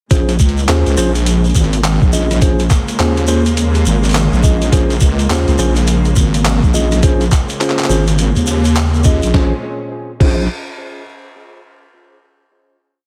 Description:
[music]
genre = glitch hop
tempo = 104 BPM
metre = 4/4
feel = swing 62% on 16ths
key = Bb minor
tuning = A4 = 444 Hz
[part]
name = dark studio string section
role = sustained chords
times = 0.1-9.6 s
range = Bb2 to Db4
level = -24 LUFS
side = equal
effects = sidechain pumping
[part]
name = mellow tine electric piano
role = stabs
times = 0.1-10.4 s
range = Db4 to Eb5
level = -22 LUFS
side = equal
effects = sidechain pumping, tape echo
[part]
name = wobble bass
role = bass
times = 0.1-10.5 s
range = Ab1 to Eb2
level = -16 LUFS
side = equal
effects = chorus, tube saturation
[part]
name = boom bap sampler-style drum kit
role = drums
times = 0.1-10.3 s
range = crash cymbal, handclaps, hi-hat, rim click, snare drum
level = -24 LUFS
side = equal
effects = none
[part]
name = electronic kick drum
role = drums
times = 0.1-10.3 s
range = none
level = -15 LUFS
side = equal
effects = none
[part]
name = shekere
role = percussion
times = 0.1-9.3 s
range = none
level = -28 LUFS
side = equal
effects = none
[sound]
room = light reverb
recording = heavily compressed radio sound, multiband compression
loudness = -13 LUFS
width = mono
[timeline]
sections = 0.1-9.3 drop; 9.3-11.6 final chord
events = drop 0.1-9.3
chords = 0.1 Bbm9

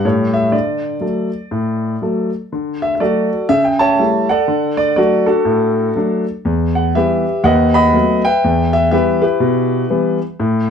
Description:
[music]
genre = jazz, stride piano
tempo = 122 BPM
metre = 4/4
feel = swing 61% on 8ths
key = D major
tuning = A4 = 445 Hz
[part]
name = warm concert grand piano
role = solo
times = 0.0-10.7 s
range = D#2 to B5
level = -13 LUFS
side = equal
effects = none
[sound]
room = moderate small room ambience, RT60 0.5 s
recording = none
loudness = -13 LUFS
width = side -7 dB against mid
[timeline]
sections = 0.0-2.5 A section; 2.5-10.7 A section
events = none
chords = 0.0 A7; 0.5 D; 3.5 A7/C#; 4.5 D; 6.5 Em; 7.4 B7/D#; 8.4 Em

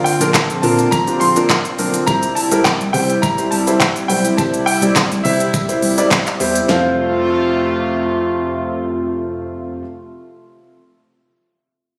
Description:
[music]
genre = dance-pop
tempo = 104 BPM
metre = 4/4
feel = straight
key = F major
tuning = A4 = 440 Hz
[part]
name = warm baby grand piano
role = melody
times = 0.0-9.8 s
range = E5 to C6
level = -23 LUFS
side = equal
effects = digital delay
[part]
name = chorused pulse-width pad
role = sustained chords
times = 0.0-9.8 s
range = C3 to F4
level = -22 LUFS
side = equal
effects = sidechain pumping
[part]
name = pop drum kit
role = drums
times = 0.1-6.8 s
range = handclaps, hi-hat, kick drum, shaker, snare drum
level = -21 LUFS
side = equal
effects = none
[part]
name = warm baby grand piano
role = accompaniment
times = 0.2-9.8 s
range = F3 to D5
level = -22 LUFS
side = equal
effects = sidechain pumping
[part]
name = mellow tine electric piano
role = bass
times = 0.2-9.8 s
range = Bb1 to C3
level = -26 LUFS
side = equal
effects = sidechain pumping
[part]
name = group handclap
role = percussion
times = 0.3-7.0 s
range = none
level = -30 LUFS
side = equal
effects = none
[sound]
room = light reverb, small room ambience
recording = recorded on a phone in the room, studio reverb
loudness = -16 LUFS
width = mono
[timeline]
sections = 0.0-6.7 A section; 6.7-9.0 B section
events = none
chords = 0.0 Bb; 2.1 C; 6.7 F

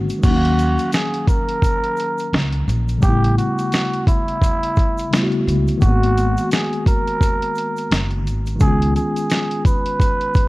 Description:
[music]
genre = lo-fi hip hop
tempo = 86 BPM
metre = 4/4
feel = swing 59% on 16ths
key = Eb minor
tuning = A4 = 441 Hz
[part]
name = mellow tine electric piano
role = accompaniment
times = 0.0-10.5 s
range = C#3 to F5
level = -23 LUFS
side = left 2 dB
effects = medium stereo tremolo, low-pass filter
[part]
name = upright bass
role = bass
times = 0.0-8.9 s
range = Gb1 to Eb2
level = -19 LUFS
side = equal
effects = none
[part]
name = dusty soul sampler-style drum kit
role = drums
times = 0.1-10.5 s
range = crash cymbal, hi-hat, kick drum, snare drum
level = -18 LUFS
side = equal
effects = none
[part]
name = tube shaker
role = percussion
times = 0.1-10.5 s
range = none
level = -44 LUFS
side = right 6 dB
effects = none
[part]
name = trumpet with cup mute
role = melody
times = 0.2-10.5 s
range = E4 to Cb5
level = -23 LUFS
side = right 1 dB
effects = low-pass filter
[sound]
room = small room ambience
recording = cassette tape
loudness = -16 LUFS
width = side -20 dB against mid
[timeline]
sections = 0.2-10.5 A section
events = none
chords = 0.2 Ebm9; 3.0 A9; 5.8 Abm9; 8.6 Db9

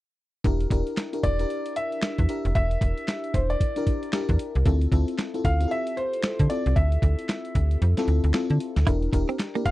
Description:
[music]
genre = R&B, new jack swing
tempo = 114 BPM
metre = 4/4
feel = swing 61% on 16ths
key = unclear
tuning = A4 = 440 Hz
[part]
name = FM electric piano with soft pad layer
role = accompaniment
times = 0.4-9.7 s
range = C4 to Bb4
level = -30 LUFS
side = left 3 dB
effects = chorus
[part]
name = slap-like FM bass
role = bass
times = 0.4-9.7 s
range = E1 to D3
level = -22 LUFS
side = equal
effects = none
[part]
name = dusty soul sampler-style drum kit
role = drums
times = 0.4-9.7 s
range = handclaps, hi-hat, kick drum, snare drum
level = -25 LUFS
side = equal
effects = none
[part]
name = dark concert grand piano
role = melody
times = 1.2-9.7 s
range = C5 to F5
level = -30 LUFS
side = equal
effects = none
[part]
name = direct-recorded clean electric guitar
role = riff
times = 8.9-9.7 s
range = Bb3 to E4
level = -29 LUFS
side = right 6 dB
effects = analog chorus
[sound]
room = little or no reverb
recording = dry, close 1970s-style studio recording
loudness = -22 LUFS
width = side -17 dB against mid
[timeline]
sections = 0.4-9.7 A section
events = kick muted 7.8-8.9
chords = 0.4 Em7b5; 4.7 Dm9; 8.9 Em7b5

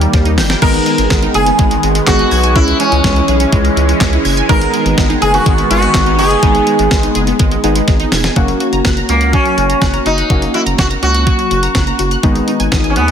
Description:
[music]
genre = synth-pop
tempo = 124 BPM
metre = 4/4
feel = straight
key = G# minor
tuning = A4 = 440 Hz
[part]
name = warm analog keys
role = accompaniment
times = 0.0-13.1 s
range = G#3 to G#4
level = -19 LUFS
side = equal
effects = chorus
[part]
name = sweeping resonant pad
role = sustained chords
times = 0.0-8.3 s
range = D#3 to C#4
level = -19 LUFS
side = equal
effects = chorus
[part]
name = wide unison pluck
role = arpeggios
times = 0.0-13.1 s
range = D#3 to G#6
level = -20 LUFS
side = right 2 dB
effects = phaser, ping-pong delay
[part]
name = round analog bass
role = bass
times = 0.0-13.1 s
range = E1 to D#2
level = -16 LUFS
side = equal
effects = none
[part]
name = clean 12-bit digital drum machine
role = drums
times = 0.0-13.1 s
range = crash cymbal, handclaps, hi-hat, kick drum, snare drum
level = -15 LUFS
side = equal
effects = none
[part]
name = sitar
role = melody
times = 0.6-13.1 s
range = A#3 to A#4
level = -15 LUFS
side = equal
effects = ping-pong delay
[sound]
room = light reverb, digital ambience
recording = dense, heavily limited modern master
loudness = -10 LUFS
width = side -8 dB against mid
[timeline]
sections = 0.0-8.4 A section; 8.4-13.1 B section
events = drum fill 0.1-0.6, 7.9-8.4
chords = 0.0 D#; 0.6 G#m; 2.6 C#m; 4.5 G#m; 8.4 F#; 12.2 G#m

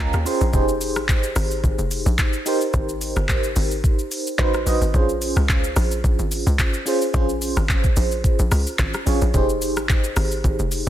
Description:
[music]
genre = amapiano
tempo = 109 BPM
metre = 4/4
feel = swing 55% on 16ths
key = Bb dorian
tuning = A4 = 440 Hz
[part]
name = FM electric piano with tremolo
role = accompaniment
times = 0.0-10.9 s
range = Db4 to C6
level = -24 LUFS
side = right 2 dB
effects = phaser
[part]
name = tight log drum bass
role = bass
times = 0.0-10.9 s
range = F1 to Eb2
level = -22 LUFS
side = equal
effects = none
[part]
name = smooth R&B drum kit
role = drums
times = 0.1-10.9 s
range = handclaps, hi-hat, kick drum, rim click, shaker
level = -22 LUFS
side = equal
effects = none
[sound]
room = little or no reverb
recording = dense, heavily limited modern master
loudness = -18 LUFS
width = side -12 dB against mid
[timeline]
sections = 0.0-10.9 A section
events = FM electric piano fill 0.0-0.5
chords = 0.0 Bbm9; 0.5 Fm9; 2.5 Abmaj9; 4.4 Adim7; 4.9 Bbm9; 9.3 Fm9

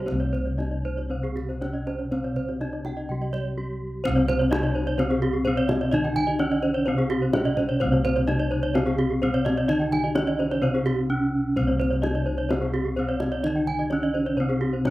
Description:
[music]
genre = Balinese gamelan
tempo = 128 BPM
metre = 4/4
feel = straight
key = C pelog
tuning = A4 = 440 Hz
[part]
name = gamelan-type bronze metallophone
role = melody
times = 0.0-14.9 s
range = C4 to G4-30c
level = -27 LUFS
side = equal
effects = none
[part]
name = gamelan-type bronze metallophone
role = accompaniment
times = 0.0-14.9 s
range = C3 to G3-30c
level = -32 LUFS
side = right 1 dB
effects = none
[part]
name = gamelan-type bronze metallophone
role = arpeggios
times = 0.0-14.9 s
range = Ab4-20c to G5-30c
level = -30 LUFS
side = left 2 dB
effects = none
[part]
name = gamelan-type bossed gongs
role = bass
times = 0.0-14.9 s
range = C2 to Eb4-30c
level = -28 LUFS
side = equal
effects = none
[part]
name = kendang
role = percussion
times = 0.1-14.9 s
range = none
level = -32 LUFS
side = left 1 dB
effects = none
[part]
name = gamelan-type bronze metallophone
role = arpeggios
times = 0.2-14.7 s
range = G4-30c to Ab5-20c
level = -30 LUFS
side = right 4 dB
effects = slapback echo
[sound]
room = little or no reverb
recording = recorded outdoors, with no room sound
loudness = -22 LUFS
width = side -17 dB against mid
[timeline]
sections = 0.0-4.0 A section; 4.0-14.9 B section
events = drum fill 3.6-4.0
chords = none

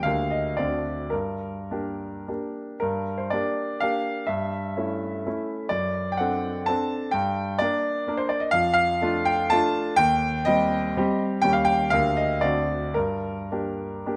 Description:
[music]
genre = classical, romantic triple-time dance for piano with dotted rhythms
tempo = 99-135 BPM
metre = 3/4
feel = rubato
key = G minor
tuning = A4 = 440 Hz
[part]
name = clear concert grand piano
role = solo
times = 0.0-14.2 s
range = D2 to A5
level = -25 LUFS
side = equal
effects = none
[sound]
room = moderate recital hall reverb, RT60 1.6 s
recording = close, detailed microphones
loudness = -25 LUFS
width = mono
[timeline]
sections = 0.0-2.8 A section; 2.8-14.2 A section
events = none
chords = 0.1 Gm/D; 0.6 D7; 1.1 Gm; 4.3 A7/G; 5.7 D7/F#; 7.1 Gm; 8.5 Dm/F; 10.0 Cm/Eb; 11.4 Eb7; 11.9 Gm/D; 12.4 D7; 13.0 Gm

